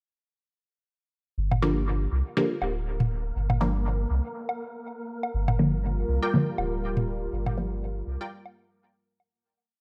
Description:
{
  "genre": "dub techno",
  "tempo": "121 BPM",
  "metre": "4/4",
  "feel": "swing 56% on 16ths",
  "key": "G minor",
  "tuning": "A4 = 441 Hz",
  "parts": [
    { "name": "pure sine sub bass", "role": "bass", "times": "1.4-8.2 s", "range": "D1 to C2", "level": "-30 LUFS", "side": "equal", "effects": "none" },
    { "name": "wind-like tuned noise texture", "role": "texture", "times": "2.3-9.3 s", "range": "Bb3 to Bb4", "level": "-43 LUFS", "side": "equal", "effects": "built-in reverb" },
    { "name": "electronic toms and woodblock", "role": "percussion", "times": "1.5-9.3 s", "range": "none", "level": "-31 LUFS", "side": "equal", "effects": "dub echo" },
    { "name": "filtered dub chord stab", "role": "stabs", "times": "1.6-7.8 s", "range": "D3 to Bb3", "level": "-30 LUFS", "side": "equal", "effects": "phaser, cassette tape, dub echo" },
    { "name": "dark analog pad", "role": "sustained chords", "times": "5.3-9.3 s", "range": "G3 to Bb4", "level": "-36 LUFS", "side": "equal", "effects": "chorus" },
    { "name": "filtered dub chord stab", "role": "riff", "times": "6.2-8.3 s", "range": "F4 to G5", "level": "-36 LUFS", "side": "equal", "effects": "phaser, ensemble chorus, dub echo" }
  ],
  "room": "light reverb, digital ambience",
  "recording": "none",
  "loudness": "-28 LUFS",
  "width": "mono",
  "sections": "1.4-9.3 groove",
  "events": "filter sweep on synth stab 1.4-9.3; fade-out 6.7-9.3",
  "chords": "1.4 Gm7"
}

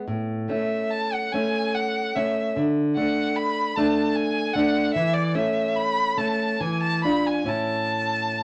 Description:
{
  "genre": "romantic duo for violin and classical guitar",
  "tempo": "66-77 BPM",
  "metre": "3/4",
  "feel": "rubato",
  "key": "A major",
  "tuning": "A4 = 442 Hz",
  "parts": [
    { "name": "nylon-string guitar", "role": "accompaniment", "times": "0.0-8.4 s", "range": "A2 to F4", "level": "-26 LUFS", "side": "equal", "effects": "none" },
    { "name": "rich violin", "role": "melody", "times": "0.5-8.4 s", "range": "D5 to B5", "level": "-28 LUFS", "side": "equal", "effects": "none" }
  ],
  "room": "moderate club reverb, RT60 0.7 s",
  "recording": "none",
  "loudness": "-24 LUFS",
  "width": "mono",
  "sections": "0.0-8.4 A section",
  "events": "none",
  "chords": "0.1 A; 2.6 D5; 4.9 A/E; 6.6 E7b9; 7.5 A"
}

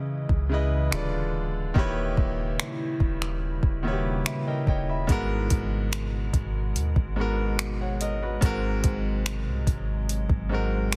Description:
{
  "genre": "contemporary R&B",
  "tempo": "72 BPM",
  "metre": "4/4",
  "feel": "straight",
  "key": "G# minor",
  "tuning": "A4 = 436 Hz",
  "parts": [
    { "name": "bright concert grand piano", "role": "accompaniment", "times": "0.0-11.0 s", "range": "G#2 to B5", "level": "-32 LUFS", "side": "equal", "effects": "none" },
    { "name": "glassy FM pad", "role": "sustained chords", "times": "0.0-11.0 s", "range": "B2 to D#5", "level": "-37 LUFS", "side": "equal", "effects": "ensemble chorus, built-in reverb" },
    { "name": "soft 808-style bass", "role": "bass", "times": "0.0-11.0 s", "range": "D1 to C#3", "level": "-31 LUFS", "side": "equal", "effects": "none" },
    { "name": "smooth R&B drum kit", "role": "drums", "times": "0.3-11.0 s", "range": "finger snaps, hi-hat, kick drum", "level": "-28 LUFS", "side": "equal", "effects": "soft clipping on snare" }
  ],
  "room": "digital ambience",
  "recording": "dense, heavily limited modern master",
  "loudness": "-27 LUFS",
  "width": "mono",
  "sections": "0.0-11.0 A section",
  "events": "grand piano fill 3.8-5.1",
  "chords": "0.0 C#m9; 0.9 Ddim7; 1.8 D#7b9b13; 5.1 G#m9; 8.4 G#7"
}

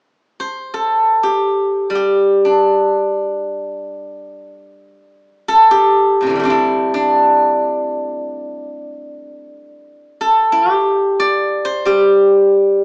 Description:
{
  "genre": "chinese traditional, Chinese solo plucked strings",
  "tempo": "free time",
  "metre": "none",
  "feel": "none",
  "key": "G zhi mode",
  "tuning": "A4 = 442 Hz",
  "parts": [
    { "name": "steel-string zither", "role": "solo", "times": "0.4-12.8 s", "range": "A2 to D5", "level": "-12 LUFS", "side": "equal", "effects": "none" }
  ],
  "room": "wet large studio reverb, RT60 0.9 s",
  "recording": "band playing live in one room, small speaker sound",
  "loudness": "-12 LUFS",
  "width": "side -37 dB against mid",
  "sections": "0.0-12.8 A section",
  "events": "none",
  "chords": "none"
}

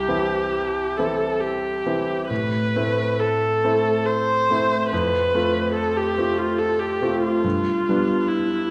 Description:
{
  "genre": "classical, romantic duo for viola and grand piano",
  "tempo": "70 BPM",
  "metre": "3/4",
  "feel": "rubato",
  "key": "C major",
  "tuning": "A4 = 440 Hz",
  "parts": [
    { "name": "rich viola", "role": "melody", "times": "0.0-8.7 s", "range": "E4 to C5", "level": "-24 LUFS", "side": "equal", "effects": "none" },
    { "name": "bright baby grand piano", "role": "accompaniment", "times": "0.0-8.7 s", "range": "C2 to F4", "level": "-26 LUFS", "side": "equal", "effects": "none" }
  ],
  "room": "wet concert hall reverb, RT60 1.8 s",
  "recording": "recorded in a church or concert hall",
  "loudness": "-22 LUFS",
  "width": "mono",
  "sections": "0.0-8.7 A section",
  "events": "none",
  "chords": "0.0 C; 2.3 Am; 4.9 F; 7.4 G7"
}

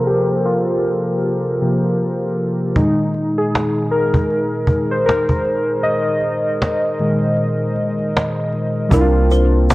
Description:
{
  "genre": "lo-fi hip hop",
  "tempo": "78 BPM",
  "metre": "4/4",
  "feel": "swing 62% on 16ths",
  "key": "unclear",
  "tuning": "A4 = 440 Hz",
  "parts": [
    { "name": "warbly lo-fi synth keys", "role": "accompaniment", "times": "0.0-9.7 s", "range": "Bb2 to Eb5", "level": "-16 LUFS", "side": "equal", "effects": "chorus, cassette tape, low-pass filter" },
    { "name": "cajon", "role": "drums", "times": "2.8-9.7 s", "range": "none", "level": "-19 LUFS", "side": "equal", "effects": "none" },
    { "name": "kalimba", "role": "melody", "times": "8.9-9.7 s", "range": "Bb4 to C5", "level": "-19 LUFS", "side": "right 1 dB", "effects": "low-pass filter" },
    { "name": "upright bass", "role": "bass", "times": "8.9-9.7 s", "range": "C2", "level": "-14 LUFS", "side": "equal", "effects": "none" },
    { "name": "egg shaker", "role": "percussion", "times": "8.9-9.7 s", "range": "none", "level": "-38 LUFS", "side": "equal", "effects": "none" }
  ],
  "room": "moderate spring reverb, RT60 1.9 s, small room ambience",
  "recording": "worn, warbling old tape, cassette tape, warbly pitch drift",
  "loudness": "-15 LUFS",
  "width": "side -18 dB against mid",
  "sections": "0.0-8.9 A section",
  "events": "synth keys solo 0.0-8.9; filter sweep on synth keys 0.0-8.9; kick muted 5.8-8.9",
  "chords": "0.0 C7sus4; 2.8 Bb7sus4; 8.9 C9sus4"
}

